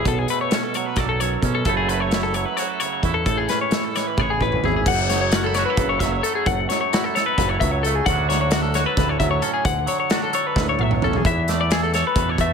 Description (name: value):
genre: math rock and midwest emo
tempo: 263 BPM (eighths)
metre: 7/8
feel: straight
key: unclear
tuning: A4 = 440 Hz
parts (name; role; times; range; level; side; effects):
- twangy electric guitar; accompaniment; 0.0-12.5 s; F#2 to A4; -25 LUFS; right 17 dB; wide subtle chorus
- twelve-string electric guitar; arpeggios; 0.0-12.5 s; F#4 to F#5; -23 LUFS; left 9 dB; spring reverb, slapback echo
- growling picked electric bass; bass; 0.0-12.5 s; F#1 to B2; -24 LUFS; right 1 dB; overdrive
- loose indie drum kit; drums; 0.1-12.5 s; crash cymbal, hi-hat, kick drum, snare drum, toms; -23 LUFS; equal; none
room: light reverb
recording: none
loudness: -18 LUFS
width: side -6 dB against mid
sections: 0.0-4.9 A section; 4.9-12.5 B section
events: drum fill 4.2-4.9, 10.6-11.2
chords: 0.1 B7sus2; 1.7 F#m7; 3.3 Amaj9; 4.9 F#m7; 8.1 Dmaj7; 11.2 E7sus4